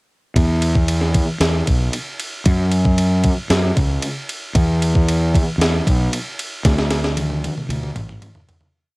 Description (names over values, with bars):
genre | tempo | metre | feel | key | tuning
rock, shoegaze and dream pop | 114 BPM | 4/4 | straight | unclear | A4 = 439 Hz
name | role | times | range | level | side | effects
fuzz fingered electric bass | bass | 0.4-8.2 s | A1 to F#2 | -18 LUFS | equal | overdrive
crisp 8-bit digital drum machine | drums | 0.4-8.7 s | kick drum, ride cymbal, snare drum, toms | -19 LUFS | equal | none
room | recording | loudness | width
little or no reverb | home recording on cassette | -16 LUFS | side -26 dB against mid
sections
0.4-8.8 A section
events
fade-out 6.6-8.8; drum fill 6.6-8.8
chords
none